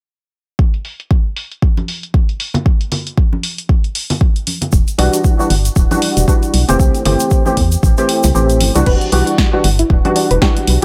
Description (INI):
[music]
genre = deep house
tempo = 116 BPM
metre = 4/4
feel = swing 58% on 16ths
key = E minor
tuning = A4 = 443 Hz
[part]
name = electronic kick drum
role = drums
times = 0.6-10.5 s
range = none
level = -15 LUFS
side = equal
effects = overdrive
[part]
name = deep house drum kit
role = drums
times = 0.7-10.8 s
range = crash cymbal, hi-hat, snare drum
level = -23 LUFS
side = equal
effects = overdrive, low-pass filter on hats, low-pass filter on cymbals, low-pass filter on snare, low-pass filter on room
[part]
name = congas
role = percussion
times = 1.8-10.8 s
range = none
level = -24 LUFS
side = equal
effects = none
[part]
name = organ-like FM bass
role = bass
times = 4.7-10.8 s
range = D1 to E2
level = -17 LUFS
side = equal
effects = sidechain pumping
[part]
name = tube shaker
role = percussion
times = 4.7-8.8 s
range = none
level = -28 LUFS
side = equal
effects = none
[part]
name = percussive organ stab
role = stabs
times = 5.0-10.8 s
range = E3 to G4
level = -18 LUFS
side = equal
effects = ensemble chorus, sidechain pumping, digital delay
[part]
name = soft round pluck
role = arpeggios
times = 8.9-10.8 s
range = D4 to B4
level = -22 LUFS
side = equal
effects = chorus, sidechain pumping, digital delay
[sound]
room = little or no reverb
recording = none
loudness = -14 LUFS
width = mono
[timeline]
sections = 0.6-8.9 A section; 8.9-10.8 B section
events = kick drops out 8.3-8.9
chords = 0.6 N.C.; 4.7 Em9; 6.8 C6; 8.9 Em9